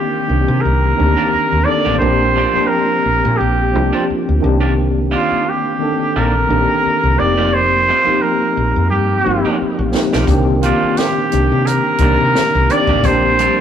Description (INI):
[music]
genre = R&B, neo-soul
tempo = 87 BPM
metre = 4/4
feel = swing 54% on 16ths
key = C dorian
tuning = A4 = 440 Hz
[part]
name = trumpet with straight mute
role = melody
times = 0.0-13.6 s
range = F4 to D5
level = -16 LUFS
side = right 1 dB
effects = tape echo
[part]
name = tine electric piano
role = accompaniment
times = 0.0-13.6 s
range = Eb3 to A4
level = -18 LUFS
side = left 1 dB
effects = medium stereo tremolo
[part]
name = woody fretless electric bass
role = bass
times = 0.3-13.6 s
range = F1 to C3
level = -17 LUFS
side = equal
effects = none
[part]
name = electric guitar through a small old amp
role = second line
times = 1.2-13.6 s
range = Eb3 to G4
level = -24 LUFS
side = right 3 dB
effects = none
[part]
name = compact cocktail drum kit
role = drums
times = 9.9-13.6 s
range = hi-hat, kick drum, snare drum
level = -20 LUFS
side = equal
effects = none
[sound]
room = moderate stone room reverb, RT60 1.2 s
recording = rough rehearsal-room recording, tube saturation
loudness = -12 LUFS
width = side -9 dB against mid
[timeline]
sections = 0.0-13.6 A section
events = drum fill 9.6-10.3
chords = 0.0 Cm9; 2.0 Bb69; 4.4 Cm9; 7.2 F9sus4; 10.3 Cm9; 13.0 Bb69